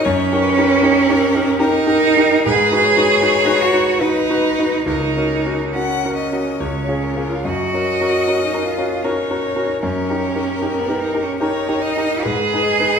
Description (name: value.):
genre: classical, slow romantic movement for piano trio.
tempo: 66-81 BPM.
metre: 3/4.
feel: rubato.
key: F# major.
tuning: A4 = 441 Hz.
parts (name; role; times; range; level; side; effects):
clear violin; melody; 0.0-13.0 s; A#4 to F#5; -23 LUFS; left 7 dB; none.
rich cello; second line; 0.0-13.0 s; B3 to G#4; -17 LUFS; right 4 dB; none.
bright concert grand piano; accompaniment; 0.0-13.0 s; C#2 to B4; -20 LUFS; left 1 dB; none.
room: wet recital hall reverb, RT60 1.4 s.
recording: recorded in a church or concert hall.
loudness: -15 LUFS.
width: side -6 dB against mid.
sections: 0.0-13.0 A section.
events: none.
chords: 0.0 D#7/F#; 2.5 G#m7; 4.9 F#/C#; 6.6 C#; 7.4 F#; 9.8 D#7/F#; 12.2 G#m.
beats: | 0.05 0.82 1.60 | 2.45 3.21 4.00 | 4.86 5.73 6.59 | 7.44 8.24 9.02 | 9.81 10.60 11.39 | 12.23.